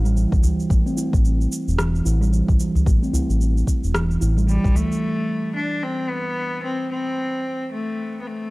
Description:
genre	organic downtempo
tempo	111 BPM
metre	4/4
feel	swing 60% on 16ths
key	A minor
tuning	A4 = 440 Hz
part	steel tongue drum	arpeggios	0.0-4.8 s	E3 to E4	-25 LUFS	right 2 dB	analog delay
part	round analog bass	bass	0.0-4.7 s	E1 to A1	-19 LUFS	equal	tube saturation
part	organic electronic drum kit	drums	0.1-8.5 s	crash cymbal, rim click, shaker	-31 LUFS	equal	low-pass filter on perc, low-pass filter on snare, low-pass filter on cymbals, low-pass filter on room
part	electronic kick drum	drums	0.3-4.7 s	none	-19 LUFS	equal	none
part	udu	percussion	0.4-4.9 s	none	-22 LUFS	equal	none
part	rich cello	melody	4.5-8.5 s	G3 to D4	-24 LUFS	left 2 dB	tape echo
room	digital ambience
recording	dry, gritty hardware recording, transformer saturation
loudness	-19 LUFS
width	side -21 dB against mid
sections	0.0-5.0 A section; 5.0-8.5 B section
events	none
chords	0.0 A5

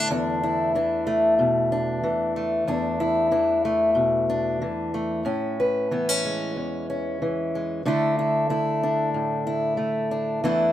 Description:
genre	folk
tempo	93 BPM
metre	4/4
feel	straight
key	A major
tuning	A4 = 440 Hz
part	fingerpicked acoustic archtop guitar	solo	0.0-10.7 s	E2 to B4	-21 LUFS	left 1 dB	none
room	moderate studio reverb, RT60 0.7 s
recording	none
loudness	-21 LUFS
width	side -12 dB against mid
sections	0.0-5.3 A section; 5.3-10.7 A section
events	none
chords	0.1 E7sus4; 5.3 Amaj7; 7.8 Dsus2

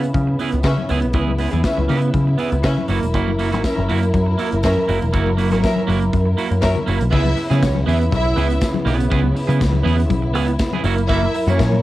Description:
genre	disco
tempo	120 BPM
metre	4/4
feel	straight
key	C# dorian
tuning	A4 = 439 Hz
part	electric guitar at the edge of break-up	accompaniment	0.0-11.8 s	A#3 to G#4	-23 LUFS	right 6 dB	none
part	dark studio string section	sustained chords	0.0-11.8 s	C#3 to A#4	-23 LUFS	equal	none
part	deep dub picked electric bass	bass	0.0-11.8 s	E1 to C#3	-18 LUFS	equal	none
part	modern studio drum kit	drums	0.0-11.7 s	crash cymbal, hi-hat, kick drum, snare drum	-24 LUFS	equal	none
part	congas	percussion	0.1-11.8 s	none	-28 LUFS	left 8 dB	none
part	dark studio string section	second line	0.6-11.8 s	C#4 to E5	-24 LUFS	equal	none
part	tambourine	percussion	0.6-11.7 s	none	-40 LUFS	left 10 dB	none
part	warm horn section	stabs	5.6-6.8 s	F#3 to A#4	-25 LUFS	left 7 dB	none
room	little or no reverb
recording	home recording on cassette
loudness	-16 LUFS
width	side -16 dB against mid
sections	0.0-7.1 A section; 7.1-11.8 B section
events	band accent 5.1-7.1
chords	0.0 C#m7; 2.9 F#7; 7.1 C#m7; 10.8 F#7

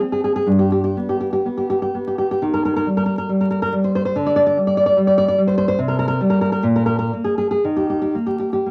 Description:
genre	romantic piece for solo classical guitar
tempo	58-76 BPM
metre	2/4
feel	rubato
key	Eb major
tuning	A4 = 435 Hz
part	nylon-string guitar	solo	0.0-8.7 s	G2 to D5	-19 LUFS	equal	none
room	wet studio reverb, RT60 0.5 s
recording	vinyl crackle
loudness	-19 LUFS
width	mono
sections	0.0-8.7 A section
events	none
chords	0.5 G; 2.4 Eb; 4.2 G5/D; 5.8 C5; 6.6 N.C.; 7.6 Eb5

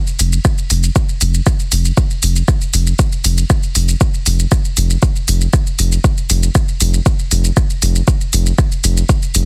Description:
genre	dub techno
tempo	118 BPM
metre	4/4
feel	straight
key	unclear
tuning	A4 = 438 Hz
part	electronic shaker and hi-hat	drums	0.1-9.5 s	none	-22 LUFS	equal	small room ambience
part	soft dub sub bass	bass	0.2-9.5 s	F1	-16 LUFS	equal	tube saturation, sidechain pumping
part	electronic kick drum	drums	0.4-9.2 s	none	-16 LUFS	equal	small room ambience
room	little or no reverb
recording	heavily compressed radio sound, multiband compression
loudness	-15 LUFS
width	mono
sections	0.0-9.5 A section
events	none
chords	none

